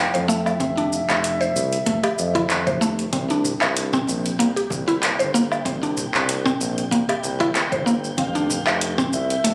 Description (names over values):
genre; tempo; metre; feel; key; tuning
organic downtempo; 95 BPM; 4/4; swing 55% on 16ths; C mixolydian; A4 = 443 Hz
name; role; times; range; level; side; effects
hollow bass bansuri; melody; 0.0-2.8, 8.2-9.5 s; E5 to F5; -29 LUFS; equal; digital delay
smooth synth bass; bass; 0.0-9.5 s; F1 to F2; -29 LUFS; equal; sidechain pumping
mallet-like synth pluck; arpeggios; 0.1-9.5 s; A3 to C5; -25 LUFS; equal; chorus, digital delay
deep house drum kit; drums; 0.1-9.5 s; handclaps, hi-hat, shaker, woodblock; -26 LUFS; equal; overdrive, studio reverb
electronic kick drum; drums; 0.6-8.3 s; none; -35 LUFS; equal; overdrive, studio reverb
wind-like tuned noise texture; texture; 3.5-9.5 s; G5; -39 LUFS; equal; built-in reverb
cajon; percussion; 3.4-9.3 s; none; -39 LUFS; equal; none
room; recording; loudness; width
moderate echo chamber reverb, RT60 2.1 s; recorded on a phone in the room, club reverb; -22 LUFS; mono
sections
0.0-9.5 A section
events
none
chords
0.0 Fmaj7(no3); 3.1 C7(no3); 8.2 Fmaj7sus2